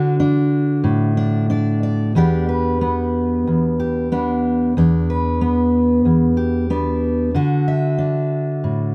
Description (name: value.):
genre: folk, solo fingerstyle acoustic guitar.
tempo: 92 BPM.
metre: 4/4.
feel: straight.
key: E minor.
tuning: A4 = 436 Hz.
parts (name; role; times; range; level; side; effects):
fingerpicked steel-string acoustic guitar; solo; 0.0-8.9 s; E2 to E5; -18 LUFS; equal; none.
room: light reverb.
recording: close, detailed microphones.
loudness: -18 LUFS.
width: mono.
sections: 0.0-2.2 A section; 2.2-8.9 B section.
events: none.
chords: 0.0 D; 2.2 Em7; 7.3 D.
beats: 0.19 0.84 1.50 | 2.16 2.81 3.46 4.11 | 4.76 5.40 6.04 6.69 | 7.33 7.98 8.63.